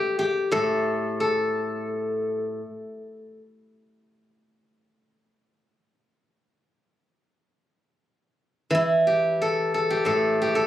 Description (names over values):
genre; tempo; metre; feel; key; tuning
chinese traditional, Chinese solo plucked strings; free time; none; none; unclear; A4 = 440 Hz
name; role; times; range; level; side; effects
steel-string zither; solo; 0.0-3.4, 8.7-10.7 s; A2 to B4; -22 LUFS; equal; none
room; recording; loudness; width
moderate recital hall reverb, RT60 1.4 s; recorded on a phone in the room, studio ambience, compression; -22 LUFS; side -12 dB against mid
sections
0.0-10.7 A section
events
none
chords
none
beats
free time